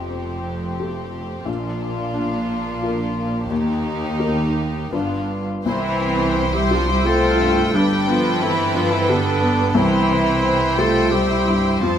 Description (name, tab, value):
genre	cinematic, emotional film score for orchestra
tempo	88 BPM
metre	3/4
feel	rubato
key	Bb major, C major from 5.7 s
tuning	A4 = 438 Hz
part	warm symphonic violin section	melody	0.0-12.0 s	F4 to A5	-28 LUFS	left 4 dB	none
part	warm symphonic violin section	second line	0.0-12.0 s	C4 to C5	-26 LUFS	left 2 dB	none
part	dark symphonic viola section	accompaniment	0.0-12.0 s	A3 to F4	-26 LUFS	right 2 dB	none
part	felt-muted upright piano	accompaniment	0.0-12.0 s	Bb1 to C5	-25 LUFS	left 3 dB	none
part	dark symphonic double bass section	bass	0.0-12.0 s	F1 to F2	-26 LUFS	right 3 dB	none
part	rich symphonic cello section	bass	0.0-12.0 s	Eb2 to A3	-24 LUFS	right 2 dB	none
part	clear clarinet	second line	5.7-12.0 s	D4 to A4	-23 LUFS	left 1 dB	none
room	wet recital hall reverb, RT60 1.5 s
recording	none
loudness	-17 LUFS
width	side -9 dB against mid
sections	0.0-5.7 A section; 5.7-12.0 B section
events	none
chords	0.0 Fadd9; 1.5 Bb; 3.5 Eb; 4.9 G7; 5.7 C; 7.7 Gadd9; 9.8 C